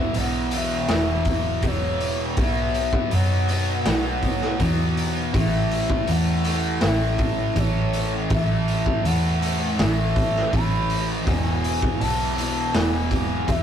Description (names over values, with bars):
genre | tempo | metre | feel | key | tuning
rock, shoegaze and dream pop | 81 BPM | 4/4 | straight | unclear | A4 = 440 Hz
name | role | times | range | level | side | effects
pure breathy sine lead | melody | 0.0-13.6 s | C#5 to B5 | -28 LUFS | left 2 dB | chorus
fuzz guitar | riff | 0.0-13.6 s | E2 to B3 | -25 LUFS | right 1 dB | distortion
vintage muted picked electric bass | bass | 0.0-13.6 s | E1 to F#2 | -24 LUFS | equal | none
raw garage drum kit | drums | 0.1-13.6 s | hi-hat, kick drum, snare drum | -25 LUFS | equal | none
room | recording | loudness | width
moderate booth ambience, RT60 0.2 s | rough rehearsal-room recording, warm saturation | -20 LUFS | side -9 dB against mid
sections
0.0-13.6 A section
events
none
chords
0.0 E5; 2.4 B5; 5.3 A5; 11.3 E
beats
0.16 0.90 1.64 | 2.38 3.13 3.87 4.61 | 5.35 6.09 6.83 7.57 | 8.31 9.05 9.79 10.53 | 11.27 12.01 12.75 13.48